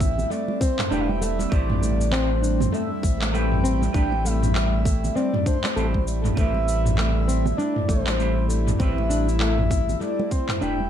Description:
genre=organic downtempo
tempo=99 BPM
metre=4/4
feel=swing 59% on 16ths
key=A minor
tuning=A4 = 441 Hz
part: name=breathy flute-like synth lead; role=melody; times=0.0-10.9 s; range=C5 to G5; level=-29 LUFS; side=left 1 dB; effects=lush chorus, analog delay
part: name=semi-hollow electric guitar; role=accompaniment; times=0.0-10.9 s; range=A3 to C5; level=-33 LUFS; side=right 4 dB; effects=sidechain pumping, dub echo
part: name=warbly tape-like pad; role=sustained chords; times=0.0-10.9 s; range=G3 to E4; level=-30 LUFS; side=left 2 dB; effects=chorus, built-in reverb, phaser, sidechain pumping
part: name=warm sub bass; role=bass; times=0.0-10.9 s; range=E1 to A1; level=-24 LUFS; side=equal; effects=sidechain pumping
part: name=electronic kick drum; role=drums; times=0.0-10.5 s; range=none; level=-22 LUFS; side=equal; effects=none
part: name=organic electronic drum kit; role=drums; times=0.0-10.8 s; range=handclaps, shaker, toms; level=-28 LUFS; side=equal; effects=none
part: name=congas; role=percussion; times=0.0-10.9 s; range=none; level=-32 LUFS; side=right 6 dB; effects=none
part: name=nylon-string guitar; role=arpeggios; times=0.3-10.8 s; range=A3 to A4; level=-29 LUFS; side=equal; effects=tape echo
room=light reverb, digital ambience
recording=echo-heavy mix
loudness=-20 LUFS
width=side -9 dB against mid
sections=0.0-10.9 A section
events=fade-out 9.6-10.9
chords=0.0 Am7

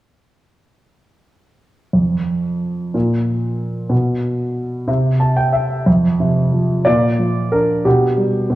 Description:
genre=classical, lyrical solo piano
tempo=61 BPM (dotted quarters)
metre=6/8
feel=rubato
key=unclear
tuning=A4 = 439 Hz
part: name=dark grand piano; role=solo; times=1.9-8.6 s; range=F2 to A5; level=-15 LUFS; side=right 1 dB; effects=none
room=moderate scoring stage reverb, RT60 1.7 s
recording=worn, warbling old tape, cassette tape, warbly pitch drift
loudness=-15 LUFS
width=side -16 dB against mid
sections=1.9-5.9 A section; 5.9-8.6 B section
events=grand piano fill 4.9-5.9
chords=1.9 N.C.; 5.9 F5; 6.9 Bb; 7.9 G/B

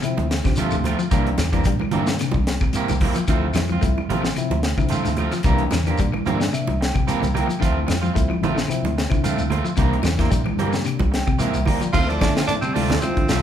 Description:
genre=afrobeat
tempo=111 BPM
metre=4/4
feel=swing 54% on 16ths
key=D minor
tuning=A4 = 440 Hz
part: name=tine electric piano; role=accompaniment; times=0.0-13.3 s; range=E3 to A5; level=-29 LUFS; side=left 2 dB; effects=medium stereo tremolo
part: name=electric guitar at the edge of break-up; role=arpeggios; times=0.0-13.4 s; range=C3 to A3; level=-27 LUFS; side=left 7 dB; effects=none
part: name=tight funk drum kit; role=drums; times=0.0-13.4 s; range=crash cymbal, hi-hat, kick drum, snare drum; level=-23 LUFS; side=equal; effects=none
part: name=claves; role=percussion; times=0.0-13.2 s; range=none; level=-40 LUFS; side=left 3 dB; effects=none
part: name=congas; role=percussion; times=0.0-13.2 s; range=none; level=-28 LUFS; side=right 5 dB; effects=none
part: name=shekere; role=percussion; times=0.0-13.4 s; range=none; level=-32 LUFS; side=left 1 dB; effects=none
part: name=electric guitar at the edge of break-up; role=stabs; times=0.2-13.4 s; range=E3 to G4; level=-27 LUFS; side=right 4 dB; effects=none
part: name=fingered electric bass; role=bass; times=0.2-13.4 s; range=A1 to D3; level=-25 LUFS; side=equal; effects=none
part: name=raspy tenor saxophone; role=melody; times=11.9-13.4 s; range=C4 to F4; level=-24 LUFS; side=right 3 dB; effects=none
part: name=trombone with bucket mute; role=second line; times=12.0-13.4 s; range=F3 to C4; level=-28 LUFS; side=right 2 dB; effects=none
room=moderate large studio reverb, RT60 1.2 s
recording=band playing live in one room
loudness=-18 LUFS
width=side -9 dB against mid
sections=0.0-11.9 A section; 11.9-13.4 B section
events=tine electric piano fill 6.0-7.6, 10.9-11.9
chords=0.0 Dm7; 1.1 C7; 3.3 Dm7; 5.5 C7; 7.6 Dm7; 9.8 C7; 11.9 Dm7

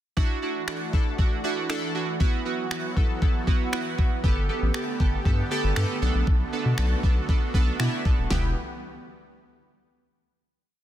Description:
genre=dance-pop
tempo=118 BPM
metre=4/4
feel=straight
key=E minor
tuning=A4 = 439 Hz
part: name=chorused retro synth keys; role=accompaniment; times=0.2-8.5 s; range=B3 to B5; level=-29 LUFS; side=right 4 dB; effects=sidechain pumping
part: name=supersaw pad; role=sustained chords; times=0.4-8.5 s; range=D3 to G4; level=-34 LUFS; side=equal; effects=sidechain pumping
part: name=smooth R&B drum kit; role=drums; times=0.2-8.4 s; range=finger snaps, kick drum, snare drum, toms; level=-24 LUFS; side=equal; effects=soft clipping on snare
part: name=saturated sub bass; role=bass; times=4.2-8.5 s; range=D#1 to B2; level=-25 LUFS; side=equal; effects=sidechain pumping
room=digital ambience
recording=dense, heavily limited modern master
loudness=-22 LUFS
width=side -12 dB against mid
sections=0.2-8.3 verse; 8.3-10.3 final chord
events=synth keys fill 3.5-4.2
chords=0.2 Dadd9; 2.2 Esus2; 4.2 Gadd9; 6.0 Bm7; 8.3 Em

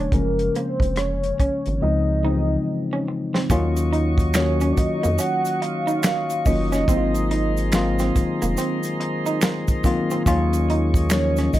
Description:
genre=R&B, neo-soul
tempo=71 BPM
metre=4/4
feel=swing 62% on 16ths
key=Eb dorian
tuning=A4 = 440 Hz
part: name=warm velvety synth lead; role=melody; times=0.0-11.6 s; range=Bb4 to Gb5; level=-26 LUFS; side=right 2 dB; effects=chorus, tremolo
part: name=electric guitar through a small old amp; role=second line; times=0.0-11.6 s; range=Bb3 to Eb4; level=-28 LUFS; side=right 4 dB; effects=none
part: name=tine electric piano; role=accompaniment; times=0.0-11.6 s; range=Db3 to Gb4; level=-24 LUFS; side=left 3 dB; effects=none
part: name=rubbery square bass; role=bass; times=0.0-11.6 s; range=F1 to F2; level=-24 LUFS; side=equal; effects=none
part: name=warm soul drum kit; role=drums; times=0.1-11.6 s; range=finger snaps, hi-hat, kick drum, rim click, snare drum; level=-22 LUFS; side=equal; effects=none
part: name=tonewheel organ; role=sustained chords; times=3.5-11.6 s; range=Gb3 to Db5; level=-30 LUFS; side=right 1 dB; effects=slow rotary speaker
part: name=egg shaker and finger snaps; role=percussion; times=3.5-11.6 s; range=none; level=-32 LUFS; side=right 8 dB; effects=none
room=light reverb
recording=none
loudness=-19 LUFS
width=side -14 dB against mid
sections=0.0-3.5 A section; 3.5-11.6 B section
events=drum fill 1.8-3.5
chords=0.1 Gbmaj9; 1.8 Dbmaj9; 3.5 Ebm9; 6.9 Ab13; 10.3 Ebm9

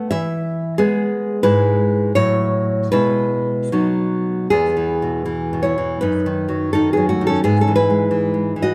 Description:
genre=romantic piece for solo classical guitar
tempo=74-92 BPM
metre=2/4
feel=rubato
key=E major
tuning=A4 = 440 Hz
part: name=nylon-string guitar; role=solo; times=0.0-8.7 s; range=E2 to E5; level=-18 LUFS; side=equal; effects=none
room=moderate recital hall reverb, RT60 1.7 s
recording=close, detailed microphones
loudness=-18 LUFS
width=mono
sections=0.0-4.5 A section; 4.5-8.7 B section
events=none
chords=0.1 E; 1.4 E/G#; 2.2 F#m7/A; 2.9 E/B; 3.7 B; 4.5 E; 6.0 D#dim/F#; 7.4 E/G#

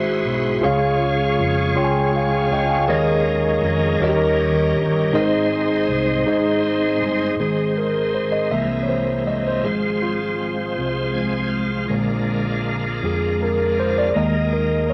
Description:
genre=gospel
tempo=53 BPM (dotted quarters)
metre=6/8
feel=straight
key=Ab major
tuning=A4 = 440 Hz
part: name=tine electric piano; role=accompaniment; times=0.0-14.9 s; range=Ab2 to Ab5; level=-22 LUFS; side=equal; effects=none
part: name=bright tonewheel organ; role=sustained chords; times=0.0-14.9 s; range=G3 to Ab5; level=-26 LUFS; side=equal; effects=chorus vibrato, slow rotary speaker
part: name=fingered electric bass with an envelope filter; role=bass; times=0.0-14.9 s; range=G1 to F2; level=-29 LUFS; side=equal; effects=none
room=moderate studio reverb, RT60 0.8 s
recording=none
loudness=-20 LUFS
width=mono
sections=0.0-7.4 A section; 7.4-14.9 B section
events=tine electric piano solo 7.4-14.9; tonewheel organ fill 10.8-11.9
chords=0.0 Ab7alt; 0.6 Db; 2.9 Eb7sus4; 4.0 Eb7; 5.1 Ab; 8.5 Caug7; 9.6 Fm/Ab; 11.9 Bb7; 14.1 Ebsus4

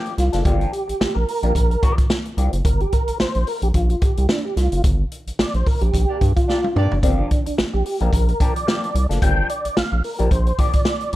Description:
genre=funk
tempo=110 BPM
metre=4/4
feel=swing 56% on 16ths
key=G minor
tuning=A4 = 440 Hz
part: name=semi-hollow electric guitar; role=accompaniment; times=0.0-2.6, 7.0-11.2 s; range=F3 to A4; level=-28 LUFS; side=left 4 dB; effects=wah, phaser
part: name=vintage drum kit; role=drums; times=0.1-11.2 s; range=hi-hat, kick drum, snare drum, toms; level=-20 LUFS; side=equal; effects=none
part: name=mellow tonewheel organ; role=melody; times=0.2-11.2 s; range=C4 to G5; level=-24 LUFS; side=right 1 dB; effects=chorus vibrato, slow rotary speaker
part: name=round analog bass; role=bass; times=0.2-11.2 s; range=F#1 to G2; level=-19 LUFS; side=equal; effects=none
part: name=mellow horn section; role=second line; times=6.1-6.9 s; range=Bb3 to D5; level=-30 LUFS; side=right 4 dB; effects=none
room=studio reverb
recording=dark, warm production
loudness=-17 LUFS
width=side -16 dB against mid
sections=0.0-11.2 A section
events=tonewheel organ solo 0.0-11.2; band accent 4.8-7.0; drum fill 6.5-7.0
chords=0.0 Gm7

